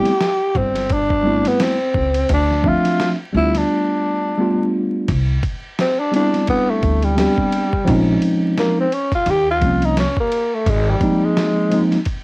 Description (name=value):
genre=hip hop, jazz-hop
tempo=86 BPM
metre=4/4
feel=swing 58% on 16ths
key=unclear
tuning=A4 = 441 Hz
part: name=growling tenor saxophone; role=melody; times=0.0-11.9 s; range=G3 to G4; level=-18 LUFS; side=equal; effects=cassette tape
part: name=mellow tine electric piano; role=accompaniment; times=0.0-12.0 s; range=F3 to E5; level=-18 LUFS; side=equal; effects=medium stereo tremolo
part: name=dusty soul sampler-style drum kit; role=drums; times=0.1-12.2 s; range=hi-hat, kick drum, ride cymbal, snare drum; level=-24 LUFS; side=equal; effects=cassette tape
part: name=upright bass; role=bass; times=0.6-10.9 s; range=G1 to Eb2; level=-20 LUFS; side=equal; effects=none
room=moderate studio reverb, RT60 0.6 s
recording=home recording on cassette, vinyl crackle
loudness=-15 LUFS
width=side -26 dB against mid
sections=0.0-5.1 A section; 5.1-12.2 B section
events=break 3.7-5.1; tenor saxophone solo 5.1-12.2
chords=0.0 Am7; 2.3 Dm7; 3.7 G7; 5.1 Cmaj9; 7.9 Bbm11; 9.3 Eb13; 10.7 Ab69